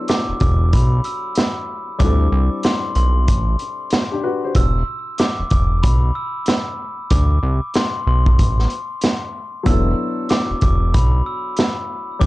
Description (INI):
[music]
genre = hip hop, boom-bap hip-hop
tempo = 94 BPM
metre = 4/4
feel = swing 62% on 16ths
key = E minor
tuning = A4 = 440 Hz
[part]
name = glockenspiel with rubber mallets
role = melody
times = 0.0-12.3 s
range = B5 to E6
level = -25 LUFS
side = left 1 dB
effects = high-pass filter, low-pass filter, digital delay
[part]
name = warm upright piano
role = accompaniment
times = 0.0-4.6, 9.6-12.3 s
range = F#3 to C5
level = -26 LUFS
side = left 3 dB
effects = cassette tape, high-pass filter, low-pass filter
[part]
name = crunchy breakbeat drum kit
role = drums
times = 0.1-12.3 s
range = hi-hat, kick drum, snare drum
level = -18 LUFS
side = equal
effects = vintage 12-bit sampler grit
[part]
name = fat analog bass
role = bass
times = 0.3-12.3 s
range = E1 to D2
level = -16 LUFS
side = equal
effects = none
[sound]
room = little or no reverb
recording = dark, warm production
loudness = -16 LUFS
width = side -19 dB against mid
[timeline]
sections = 0.0-12.3 A section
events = none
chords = 0.0 E9sus4; 2.0 D9sus4; 4.6 E5; 7.1 D5; 9.7 E9sus4